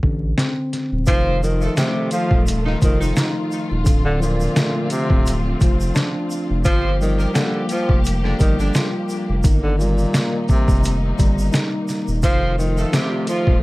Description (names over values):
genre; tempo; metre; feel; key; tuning
hip hop, boom-bap hip-hop; 86 BPM; 4/4; swing 55% on 16ths; unclear; A4 = 440 Hz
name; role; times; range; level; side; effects
tine electric piano; accompaniment; 0.0-13.6 s; D3 to F4; -24 LUFS; left 1 dB; medium stereo tremolo, high-pass filter, low-pass filter, plate reverb
saturated sub bass; bass; 0.0-13.6 s; D1 to A1; -21 LUFS; equal; none
trip hop sampler-style drum kit; drums; 0.0-13.6 s; hi-hat, kick drum, shaker, snare drum; -18 LUFS; equal; vintage 12-bit sampler grit
breathy tenor saxophone; melody; 1.1-13.6 s; Bb2 to F3; -24 LUFS; equal; high-pass filter, low-pass filter, plate reverb, ping-pong delay
warm studio string section; sustained chords; 1.1-13.6 s; C3 to G4; -30 LUFS; equal; high-pass filter, low-pass filter, plate reverb
edgy saxophone section; stabs; 1.1-13.6 s; D3 to C5; -29 LUFS; right 2 dB; high-pass filter, low-pass filter, plate reverb, ping-pong delay
tube shaker; percussion; 1.1-13.5 s; none; -39 LUFS; right 3 dB; none
room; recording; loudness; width
light reverb; vinyl crackle; -16 LUFS; side -20 dB against mid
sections
0.0-1.1 A section; 1.1-13.6 B section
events
none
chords
0.0 D5; 1.1 F7; 3.9 Dm7; 6.7 Gm7; 9.4 Cm7; 12.2 F7